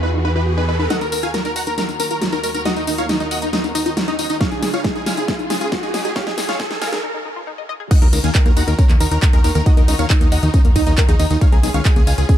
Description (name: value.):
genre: uplifting trance.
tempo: 137 BPM.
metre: 4/4.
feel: straight.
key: Eb minor.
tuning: A4 = 440 Hz.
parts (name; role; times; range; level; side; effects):
dense compressed supersaw; melody; 0.0-12.4 s; Eb4 to Bb5; -23 LUFS; right 1 dB; sidechain pumping, dub echo.
rich studio string section; sustained chords; 0.0-12.4 s; Db2 to Bb4; -29 LUFS; left 2 dB; sidechain pumping.
tight sequenced synth; arpeggios; 0.0-12.3 s; Eb3 to Eb5; -26 LUFS; left 3 dB; chorus, sidechain pumping, ping-pong delay.
fat analog bass; bass; 0.0-0.9, 8.0-12.2 s; Cb2 to E2; -19 LUFS; equal; sidechain pumping.
riser; sound effects; 0.0-7.0 s; none; -28 LUFS; right 2 dB; none.
big-room dance drum kit; drums; 0.9-12.4 s; crash cymbal, handclaps, hi-hat, ride cymbal, snare drum, tambourine; -24 LUFS; equal; low-pass filter on snare, sidechain pumping on hats, low-pass filter on hats, sidechain pumping on perc, low-pass filter on perc, sidechain pumping on cymbals, low-pass filter on cymbals, low-pass filter on room.
electronic kick drum; drums; 4.4-12.4 s; none; -14 LUFS; equal; none.
room: little or no reverb.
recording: dark, warm production, high-pass filter.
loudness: -15 LUFS.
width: side -11 dB against mid.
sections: 0.9-7.9 A section; 7.9-12.4 B section.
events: riser 0.0-0.9, 0.9-7.0; build-up 0.9-7.9; drum fill 0.9-7.0; filter sweep on synth arpeggio sound 0.9-7.9; break 7.0-7.9; drop 7.9-12.4.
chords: 0.0 Eadd9; 0.9 Ebm; 4.4 Db; 7.9 Ebm; 11.4 Db.